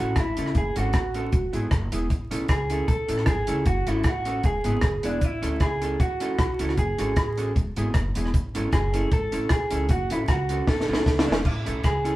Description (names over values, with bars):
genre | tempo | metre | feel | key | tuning
ska | 154 BPM | 4/4 | swing 54% on 8ths | A major | A4 = 440 Hz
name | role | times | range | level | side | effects
electric guitar through a small old amp | melody | 0.0-12.2 s | D4 to A4 | -28 LUFS | right 1 dB | none
vintage hollow-body jazz guitar | accompaniment | 0.0-12.2 s | B3 to A4 | -31 LUFS | right 1 dB | analog delay
upright bass | bass | 0.0-12.2 s | E1 to E2 | -29 LUFS | equal | none
compact cocktail drum kit | drums | 0.2-12.1 s | crash cymbal, hi-hat, kick drum, rim click, snare drum | -24 LUFS | equal | none
room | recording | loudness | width
moderate studio reverb, RT60 0.8 s | band playing live in one room, vinyl crackle | -22 LUFS | side -17 dB against mid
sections
0.0-11.5 A section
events
drum fill 10.7-11.5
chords
0.0 A; 0.6 F#m; 1.3 E; 2.1 A; 3.7 F#m; 4.4 E; 5.2 A; 6.8 F#m; 7.6 E; 8.3 A; 9.9 F#m; 10.7 A